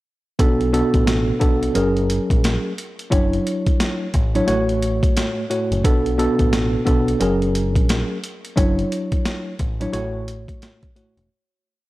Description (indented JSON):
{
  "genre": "hip hop, boom-bap hip-hop",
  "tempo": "88 BPM",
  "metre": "4/4",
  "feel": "swing 61% on 16ths",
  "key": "B dorian",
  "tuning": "A4 = 441 Hz",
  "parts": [
    { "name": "mellow tine electric piano", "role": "accompaniment", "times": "0.4-11.3 s", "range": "A2 to C#5", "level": "-20 LUFS", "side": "equal", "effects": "medium stereo tremolo, high-pass filter, low-pass filter" },
    { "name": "deep dub picked electric bass", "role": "bass", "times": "0.4-11.3 s", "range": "E1 to B1", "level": "-23 LUFS", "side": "equal", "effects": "none" },
    { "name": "boom bap sampler-style drum kit", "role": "drums", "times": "0.4-11.3 s", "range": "hi-hat, kick drum, snare drum", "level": "-20 LUFS", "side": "equal", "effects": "none" }
  ],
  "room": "light reverb",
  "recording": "dry, gritty hardware recording",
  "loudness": "-17 LUFS",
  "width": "side -18 dB against mid",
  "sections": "0.4-11.3 verse",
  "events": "fade-out 8.6-11.3",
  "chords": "0.4 Bm7; 1.8 F#add9; 3.1 Dmaj7/F#; 4.5 A6; 5.8 Bm7; 7.2 F#add9; 8.6 Dmaj7/F#; 9.9 A6"
}